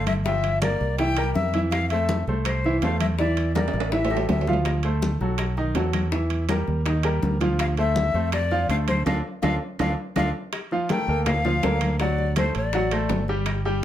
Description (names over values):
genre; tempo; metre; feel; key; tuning
latin, salsa; 164 BPM; 4/4; straight; D minor; A4 = 440 Hz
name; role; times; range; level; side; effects
breathy bright jazz flute; melody; 0.0-4.6, 7.6-13.3 s; C5 to G5; -27 LUFS; left 4 dB; none
bright upright piano; accompaniment; 0.0-13.8 s; D#3 to G5; -27 LUFS; right 1 dB; none
fingered electric bass; bass; 0.0-13.8 s; G1 to F2; -25 LUFS; right 1 dB; none
bongos; percussion; 0.1-13.6 s; none; -34 LUFS; left 5 dB; none
claves; percussion; 0.1-13.7 s; none; -39 LUFS; right 1 dB; none
congas; percussion; 0.1-13.8 s; none; -30 LUFS; left 2 dB; none
timbales; percussion; 0.1-13.6 s; none; -32 LUFS; right 5 dB; none
room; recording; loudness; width
moderate studio reverb, RT60 0.7 s; none; -21 LUFS; side -11 dB against mid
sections
0.0-10.5 A section; 10.5-13.8 B section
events
drum fill 3.6-4.7, 9.6-10.5; band accent 9.1-10.5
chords
0.3 Gm7; 1.0 C7; 1.7 Fmaj7; 3.2 Em7b5; 3.9 A5; 4.7 Dm7; 5.4 B7; 6.1 Edim; 6.9 Ebadd9; 7.6 Dm7; 10.5 Bbmaj7; 12.0 D7